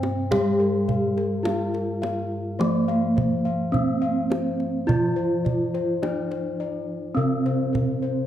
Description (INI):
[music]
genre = Javanese gamelan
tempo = 52 BPM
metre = 4/4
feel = straight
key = C slendro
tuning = A4 = 440 Hz
[part]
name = gamelan-type bronze metallophone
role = melody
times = 0.0-8.3 s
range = Bb3-45c to G4+25c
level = -27 LUFS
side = right 2 dB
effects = none
[part]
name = gamelan-type bronze metallophone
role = accompaniment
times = 0.0-8.3 s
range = C3 to Bb3-45c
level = -28 LUFS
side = right 2 dB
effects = none
[part]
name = gamelan-type bossed gongs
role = arpeggios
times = 0.0-8.3 s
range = Bb4-45c to F5-35c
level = -30 LUFS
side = left 5 dB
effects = none
[part]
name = gamelan-type bossed gongs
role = bass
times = 0.0-8.3 s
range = G2+25c to G4+25c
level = -28 LUFS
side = left 1 dB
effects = none
[part]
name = kendang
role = percussion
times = 0.0-8.0 s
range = none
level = -28 LUFS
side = right 2 dB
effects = none
[sound]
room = moderate recital hall reverb, RT60 1.4 s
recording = dark, warm production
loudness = -21 LUFS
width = side -11 dB against mid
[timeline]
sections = 0.0-8.3 A section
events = drum fill 0.0-0.3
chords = none